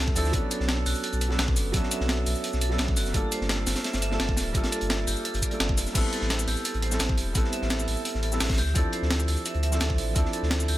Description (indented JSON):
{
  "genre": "liquid drum and bass",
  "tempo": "171 BPM",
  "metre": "4/4",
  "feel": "straight",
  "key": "unclear",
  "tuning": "A4 = 439 Hz",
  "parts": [
    { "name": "warm concert grand piano", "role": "accompaniment", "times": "0.0-10.8 s", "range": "F3 to A4", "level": "-32 LUFS", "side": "right 1 dB", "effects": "dub echo" },
    { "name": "vibraphone with hard mallets", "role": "arpeggios", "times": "0.0-10.8 s", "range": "F#4 to E5", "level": "-34 LUFS", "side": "right 4 dB", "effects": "dub echo" },
    { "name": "warm sub bass", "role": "bass", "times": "0.0-10.8 s", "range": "D1 to D2", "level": "-28 LUFS", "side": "equal", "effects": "none" },
    { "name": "electronic kick drum", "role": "drums", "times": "0.1-10.2 s", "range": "none", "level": "-27 LUFS", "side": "equal", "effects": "overdrive" },
    { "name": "breakbeat sampler-style drum kit", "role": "drums", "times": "0.2-10.8 s", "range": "crash cymbal, hi-hat, shaker, snare drum", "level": "-30 LUFS", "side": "equal", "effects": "none" },
    { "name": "crunchy breakbeat drum kit", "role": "drums", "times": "0.2-10.8 s", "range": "hi-hat, snare drum", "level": "-34 LUFS", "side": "equal", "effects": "high-pass filter on hats, high-pass filter on snare, high-pass filter on room" }
  ],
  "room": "small room ambience",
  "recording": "none",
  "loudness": "-24 LUFS",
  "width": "side -15 dB against mid",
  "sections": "0.0-5.9 A section; 5.9-10.8 A section",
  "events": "drop 0.0-5.9, 5.9-10.8",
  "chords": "0.3 Bm9; 3.1 Gm9; 5.9 Am9; 8.6 Dm9"
}